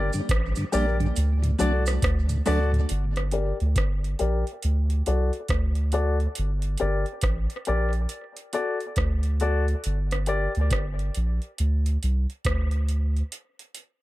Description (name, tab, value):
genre	dub reggae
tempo	69 BPM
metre	4/4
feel	swing 62% on 16ths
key	G harmonic minor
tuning	A4 = 439 Hz
part	warm upright piano	stabs	0.0-10.5 s	F#4 to D5	-29 LUFS	left 4 dB	low-pass filter, tape echo
part	soft dub sub bass	bass	0.0-13.2 s	G1 to D2	-24 LUFS	equal	none
part	mellow tonewheel organ	accompaniment	0.1-2.8 s	D2 to D4	-29 LUFS	equal	slow rotary speaker, tape echo
part	booming analog drum machine	drums	0.1-14.0 s	hi-hat, kick drum, rim click	-28 LUFS	equal	overdrive
part	cabasa	percussion	0.1-2.7 s	none	-38 LUFS	right 8 dB	tape echo
room	digital ambience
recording	none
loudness	-23 LUFS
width	side -17 dB against mid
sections	0.0-2.9 A section; 2.9-14.0 B section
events	filter sweep on upright piano 2.9-14.0; break 13.3-14.0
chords	0.0 Gm; 1.2 D; 2.9 Gm; 4.6 D; 6.4 Gm; 8.1 D; 9.8 Gm; 11.6 Csus2; 13.3 N.C.